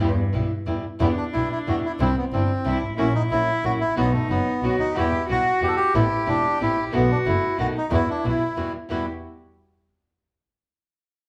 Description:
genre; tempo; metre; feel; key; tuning
tango; 182 BPM; 3/4; rubato; E minor; A4 = 441 Hz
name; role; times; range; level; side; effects
warm cello; second line; 0.0-9.1 s; G2 to G4; -30 LUFS; equal; none
flamenco guitar; accompaniment; 0.0-9.0 s; E2 to F#4; -31 LUFS; equal; none
muted studio string section; stabs; 0.0-9.0 s; G3 to A4; -38 LUFS; equal; none
clear double bass; bass; 0.0-9.0 s; E1 to E2; -28 LUFS; equal; none
bandoneon; melody; 1.0-9.1 s; A3 to A4; -27 LUFS; equal; none
room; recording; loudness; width
wet large studio reverb, RT60 0.9 s; band playing live in one room; -23 LUFS; mono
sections
0.0-1.0 A section; 1.0-8.9 B section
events
cello solo 0.0-1.0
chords
0.0 Em; 2.0 Cadd9; 3.0 F#7/A#; 4.0 B; 5.0 Emadd9; 5.9 Amadd9; 6.9 B7sus4; 7.6 B7; 7.9 Emadd9

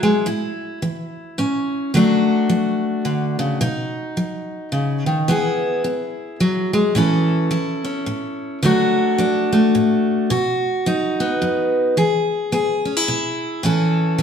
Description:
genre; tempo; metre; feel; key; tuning
country; 108 BPM; 3/4; swing 60% on 8ths; A major; A4 = 441 Hz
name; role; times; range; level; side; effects
picked steel-string acoustic guitar; solo; 0.0-14.2 s; F#2 to A4; -17 LUFS; equal; none
room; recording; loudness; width
wet stone room reverb, RT60 1.3 s; band playing live in one room; -17 LUFS; side -7 dB against mid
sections
0.3-7.0 A section; 7.0-14.2 B section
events
none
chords
0.3 A; 1.9 D; 3.6 B; 5.3 E; 7.0 A; 8.6 D; 10.3 B; 12.0 E; 13.6 A

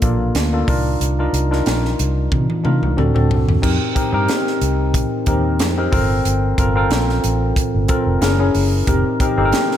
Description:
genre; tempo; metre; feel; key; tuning
polished 1980s jazz-funk pop; 92 BPM; 4/4; swing 54% on 16ths; unclear; A4 = 443 Hz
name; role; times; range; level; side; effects
barky tine electric piano; accompaniment; 0.0-9.8 s; Bb3 to Bb4; -19 LUFS; left 2 dB; lush chorus
vintage muted fingered electric bass; bass; 0.0-9.5 s; F1 to C3; -19 LUFS; equal; none
crisp fusion drum kit; drums; 0.0-9.8 s; crash cymbal, hi-hat, kick drum, snare drum, toms; -20 LUFS; right 1 dB; gated reverb
room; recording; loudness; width
light reverb, small room reverb; none; -15 LUFS; side -10 dB against mid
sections
0.0-3.6 A section; 3.6-9.8 B section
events
drum fill 2.3-3.6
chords
0.0 Gm7; 0.7 Cm11; 3.0 D7; 3.6 F9sus4; 5.9 Gm11; 8.2 F#9; 8.9 F9sus4

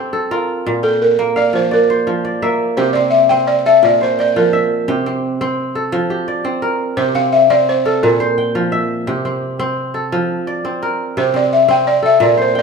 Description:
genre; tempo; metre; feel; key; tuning
west african traditional, West African string and xylophone music; 114 BPM (dotted quarters); 12/8; straight; unclear; A4 = 440 Hz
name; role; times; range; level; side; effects
kora; arpeggios; 0.0-12.6 s; Bb2 to G5; -18 LUFS; right 1 dB; none
balafon; melody; 0.8-12.6 s; A4 to G5; -12 LUFS; left 1 dB; none
room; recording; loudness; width
wet recital hall reverb, RT60 1.4 s; minimal, uncompressed stereo recording; -13 LUFS; side -5 dB against mid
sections
0.0-2.8 A section; 2.8-12.6 B section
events
none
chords
0.0 F; 0.7 Bb; 2.8 C; 3.8 Bb5; 4.9 C; 5.9 F; 7.0 C5; 8.0 Bb5; 9.1 C; 10.1 F; 11.2 C5

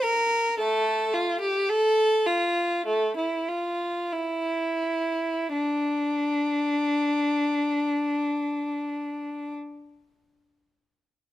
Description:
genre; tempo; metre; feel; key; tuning
classical, baroque-style suite movement for unaccompanied violin; 41-55 BPM; 4/4; rubato; D minor; A4 = 438 Hz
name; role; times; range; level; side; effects
warm violin; solo; 0.0-9.5 s; A3 to Bb4; -24 LUFS; equal; none
room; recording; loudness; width
light reverb; close, detailed microphones; -24 LUFS; side -14 dB against mid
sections
0.0-5.5 A section; 5.5-10.6 B section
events
slowing down 0.0-5.5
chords
none

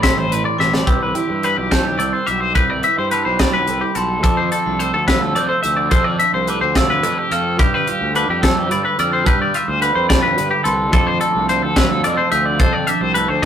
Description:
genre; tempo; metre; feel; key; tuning
math rock and midwest emo; 72 BPM (dotted quarters); 6/8; straight; unclear; A4 = 438 Hz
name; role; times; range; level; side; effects
glockenspiel with hard plastic mallets; melody; 0.0-13.5 s; B5 to A6; -23 LUFS; right 3 dB; none
twelve-string electric guitar; accompaniment; 0.0-13.5 s; A2 to B4; -24 LUFS; right 5 dB; phaser
twangy electric guitar; arpeggios; 0.0-13.5 s; G4 to E5; -18 LUFS; left 4 dB; none
fuzz fingered electric bass; bass; 0.0-13.5 s; A1 to G2; -24 LUFS; equal; overdrive
crisp fusion drum kit; drums; 0.0-13.5 s; hi-hat, kick drum, snare drum; -19 LUFS; equal; none
room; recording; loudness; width
light reverb; rough rehearsal-room recording, tube saturation; -14 LUFS; side -9 dB against mid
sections
0.9-13.5 A section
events
drum fill 0.6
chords
0.0 Am9; 0.9 Cmaj7; 4.2 F6

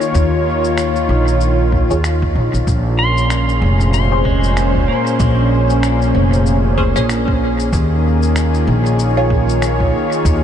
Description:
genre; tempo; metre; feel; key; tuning
ambient dub; 95 BPM; 4/4; swing 58% on 16ths; Bb minor; A4 = 440 Hz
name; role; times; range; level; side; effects
warm analog pad; sustained chords; 0.0-10.4 s; Bb2 to Db5; -17 LUFS; equal; wide subtle chorus
pedal steel guitar; arpeggios; 0.0-7.6 s; Ab3 to C6; -22 LUFS; left 1 dB; ping-pong delay
electronic cabasa and finger snaps; drums; 0.0-10.4 s; none; -29 LUFS; left 1 dB; dub echo
upright bass; bass; 0.1-10.4 s; F1 to Eb2; -16 LUFS; equal; tube saturation
electronic kick drum; drums; 0.1-10.4 s; none; -19 LUFS; equal; none
filtered dub chord stab; stabs; 1.9-9.4 s; Db4 to Db5; -25 LUFS; left 1 dB; phaser, lush chorus, dub echo
room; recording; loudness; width
moderate huge ambient reverb, RT60 7.5 s; dreamy mix soaked in reverb, nothing above 10.9 kHz; -13 LUFS; side -9 dB against mid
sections
0.0-10.4 A section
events
none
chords
0.0 Eb7(no3); 2.7 Bbm7; 7.7 Eb7sus4

